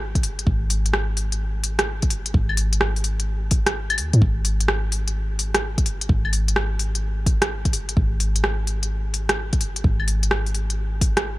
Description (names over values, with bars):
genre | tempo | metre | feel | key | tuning
future garage | 128 BPM | 4/4 | swing 66% on 16ths | unclear | A4 = 441 Hz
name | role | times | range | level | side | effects
soft 808-style bass | bass | 0.0-11.4 s | G#1 to G#2 | -23 LUFS | equal | sidechain pumping
electronic kick drum | drums | 0.2-11.1 s | none | -21 LUFS | equal | none
organic electronic drum kit | drums | 0.2-11.2 s | claves, hi-hat, rim click | -25 LUFS | equal | none
room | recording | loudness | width
little or no reverb | none | -20 LUFS | side -18 dB against mid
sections
0.0-11.4 A section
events
kick drops out 3.7-4.2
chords
none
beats
0.00 | 0.47 0.94 1.41 1.87 | 2.34 2.81 3.28 3.75 | 4.22 4.69 5.16 5.62 | 6.09 6.56 7.03 7.50 | 7.97 8.44 8.90 9.37 | 9.84 10.31 10.78 11.25